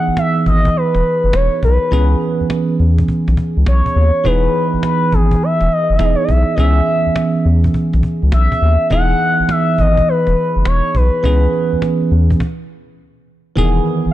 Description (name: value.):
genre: R&B, new jack swing.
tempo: 103 BPM.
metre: 4/4.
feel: swing 66% on 16ths.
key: E major.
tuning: A4 = 440 Hz.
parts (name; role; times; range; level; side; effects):
expressive portamento lead; melody; 0.0-12.1 s; G#4 to F#5; -17 LUFS; left 1 dB; chorus.
bell-like tine electric piano; accompaniment; 0.0-14.1 s; D#3 to G#4; -18 LUFS; right 2 dB; phaser.
round analog bass; bass; 0.1-14.1 s; E1 to E2; -13 LUFS; equal; none.
cajon; drums; 0.1-14.1 s; none; -24 LUFS; equal; none.
room: light reverb.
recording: dark, warm production.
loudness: -12 LUFS.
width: side -14 dB against mid.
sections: 0.0-13.6 A section.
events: stop 12.4-13.6.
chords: 0.0 Emaj7; 1.9 C#m7; 4.2 Emaj7; 6.6 C#m7; 8.9 Emaj7; 11.2 C#m7; 13.6 Emaj7.